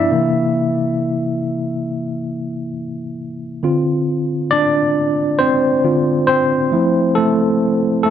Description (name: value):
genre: R&B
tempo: 68 BPM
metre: 4/4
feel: swing 54% on 16ths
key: D minor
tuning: A4 = 440 Hz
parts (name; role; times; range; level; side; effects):
- mellow tine electric piano; solo; 0.0-8.1 s; G2 to E5; -15 LUFS; equal; overdrive, fast stereo tremolo
room: moderate plate reverb, RT60 3.8 s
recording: none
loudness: -15 LUFS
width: side -10 dB against mid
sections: 0.0-3.6 A section; 3.6-8.1 B section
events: tine electric piano solo 0.0-3.6, 3.6-8.1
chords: 0.1 C7; 3.6 Dm7; 6.7 Fmaj7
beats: | 0.10 0.98 1.86 2.74 | 3.62 4.51 5.39 6.27 | 7.15 8.04